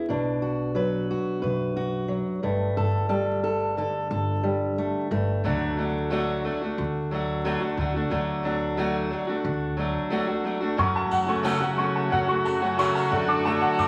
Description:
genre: indie folk with a building arrangement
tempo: 90 BPM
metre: 4/4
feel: straight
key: unclear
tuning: A4 = 444 Hz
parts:
  - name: fingerpicked steel-string acoustic guitar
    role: accompaniment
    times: 0.0-8.1 s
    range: F#2 to B4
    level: -29 LUFS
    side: equal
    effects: none
  - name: upright bass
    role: bass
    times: 0.1-13.9 s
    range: G1 to F#2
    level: -33 LUFS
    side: equal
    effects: none
  - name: picked steel-string acoustic guitar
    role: accompaniment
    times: 5.4-13.9 s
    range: F#2 to A4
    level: -28 LUFS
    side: equal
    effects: none
  - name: clear brass ensemble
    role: sustained chords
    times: 10.8-13.9 s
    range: C#3 to F#4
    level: -30 LUFS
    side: equal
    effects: none
  - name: warm upright piano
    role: arpeggios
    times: 10.8-13.9 s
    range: F#5 to D6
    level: -27 LUFS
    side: equal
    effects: none
  - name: tambourine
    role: percussion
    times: 11.1-13.9 s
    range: none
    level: -45 LUFS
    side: equal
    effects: none
room: wet large studio reverb, RT60 1.2 s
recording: vinyl crackle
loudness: -26 LUFS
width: mono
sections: 0.1-10.8 A section; 10.8-13.9 B section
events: none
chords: 0.1 Bm; 2.4 Gsus2; 5.4 D; 10.8 F#m; 13.1 D/F#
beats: | 0.10 0.77 1.44 2.10 | 2.77 3.44 4.11 4.78 | 5.44 6.11 6.78 7.45 | 8.11 8.78 9.45 10.11 | 10.78 11.45 12.11 12.78 | 13.45

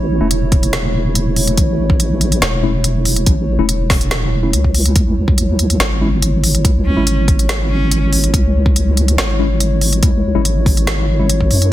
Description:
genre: deep dubstep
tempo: 142 BPM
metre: 4/4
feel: half-time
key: C# minor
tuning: A4 = 440 Hz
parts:
  - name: dark analog pad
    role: sustained chords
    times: 0.0-11.7 s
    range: G#3 to C#5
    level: -22 LUFS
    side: equal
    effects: chorus
  - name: deep soft wobble bass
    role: bass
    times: 0.0-11.7 s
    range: E1 to F#2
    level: -15 LUFS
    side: equal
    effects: chorus
  - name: mellow tine electric piano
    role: stabs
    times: 0.2-11.3 s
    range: G#3 to E4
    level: -23 LUFS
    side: left 3 dB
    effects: medium stereo tremolo, dub echo
  - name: deep house drum kit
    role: drums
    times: 0.3-11.7 s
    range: hi-hat, snare drum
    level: -18 LUFS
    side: equal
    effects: none
  - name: electronic kick drum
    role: drums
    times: 0.5-11.5 s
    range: none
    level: -15 LUFS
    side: equal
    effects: none
  - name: warm cello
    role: melody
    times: 6.9-8.0 s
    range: C#4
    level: -24 LUFS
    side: right 1 dB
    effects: dub echo
room: digital ambience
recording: dense, heavily limited modern master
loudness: -12 LUFS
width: side -14 dB against mid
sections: 0.0-11.7 A section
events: none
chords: 0.0 A; 5.0 C#m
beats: 0.31 0.73 1.15 | 1.58 2.00 2.42 2.84 | 3.27 3.69 4.11 4.53 | 4.96 5.38 5.80 6.22 | 6.65 7.07 7.49 7.91 | 8.34 8.76 9.18 9.60 | 10.03 10.45 10.87 11.29 | 11.72

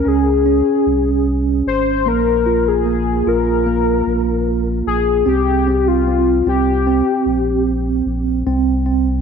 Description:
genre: pop ballad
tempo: 75 BPM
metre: 4/4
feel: straight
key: Ab major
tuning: A4 = 440 Hz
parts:
  - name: warm velvety synth lead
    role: melody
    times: 0.0-7.6 s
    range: F4 to C5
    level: -18 LUFS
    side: left 9 dB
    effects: chorus, slapback echo
  - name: tine electric piano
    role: accompaniment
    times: 0.0-9.2 s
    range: Bb3 to F4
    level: -18 LUFS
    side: right 4 dB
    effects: medium stereo tremolo
  - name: warm sub bass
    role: bass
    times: 0.1-9.2 s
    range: Ab1 to Db2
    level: -20 LUFS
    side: right 2 dB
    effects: none
room: moderate echo chamber reverb, RT60 2.5 s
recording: none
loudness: -14 LUFS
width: side -6 dB against mid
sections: 0.0-9.2 A section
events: none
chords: 0.0 Db5; 2.1 Bb5; 5.3 Abadd9 (rootless)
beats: 0.46 1.26 | 2.06 2.86 3.66 4.46 | 5.26 6.06 6.86 7.66 | 8.46

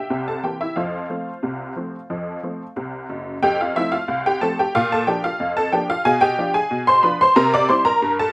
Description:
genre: ragtime piano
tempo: 91 BPM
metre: 2/4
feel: straight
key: F major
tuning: A4 = 440 Hz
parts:
  - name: honky-tonk upright piano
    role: solo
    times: 0.0-8.3 s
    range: Gb1 to D6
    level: -17 LUFS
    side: equal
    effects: none
room: little or no reverb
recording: recorded outdoors, with no room sound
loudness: -17 LUFS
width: side -28 dB against mid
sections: 0.0-3.4 A section; 3.4-8.3 B section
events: none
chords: 0.1 C7; 0.8 F; 4.7 Bb; 6.1 Bdim7; 7.4 C7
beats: 0.10 | 0.76 1.43 | 2.09 2.76 | 3.42 4.09 | 4.74 5.40 | 6.06 6.71 | 7.37 8.02

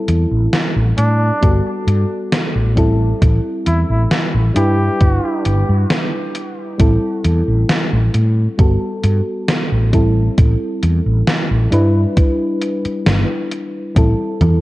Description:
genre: vaporwave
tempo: 67 BPM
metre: 4/4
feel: straight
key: A dorian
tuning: A4 = 442 Hz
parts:
  - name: mellow FM electric piano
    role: accompaniment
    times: 0.0-14.6 s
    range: G3 to B4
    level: -20 LUFS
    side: equal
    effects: wide subtle chorus, analog delay
  - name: mellow fretless electric bass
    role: bass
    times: 0.1-14.6 s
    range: G1 to A2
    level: -14 LUFS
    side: equal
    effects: none
  - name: gated 80s digital drum machine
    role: drums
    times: 0.1-14.6 s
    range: congas, hi-hat, snare drum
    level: -19 LUFS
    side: equal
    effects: gated reverb, gated reverb snare, overdrive, vintage 12-bit sampler grit
  - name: clear flugelhorn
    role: melody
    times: 1.0-5.5 s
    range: D4 to G4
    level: -24 LUFS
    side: equal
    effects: tape echo
  - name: electronic kick drum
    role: drums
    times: 1.4-14.1 s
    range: none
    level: -13 LUFS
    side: equal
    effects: overdrive, vintage 12-bit sampler grit
room: light reverb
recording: dark, warm production, cassette tape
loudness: -13 LUFS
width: side -18 dB against mid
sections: 0.0-14.6 A section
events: none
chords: 0.0 Am7; 1.4 Gmaj9; 2.8 Am7; 4.6 Em7/G; 6.8 Am7; 8.6 Gmaj9; 9.9 Am7; 11.7 Em7/G; 14.0 Am7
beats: 0.53 1.43 2.32 | 3.22 4.11 5.01 5.90 | 6.80 7.69 8.59 9.48 | 10.38 11.28 12.17 13.07 | 13.96

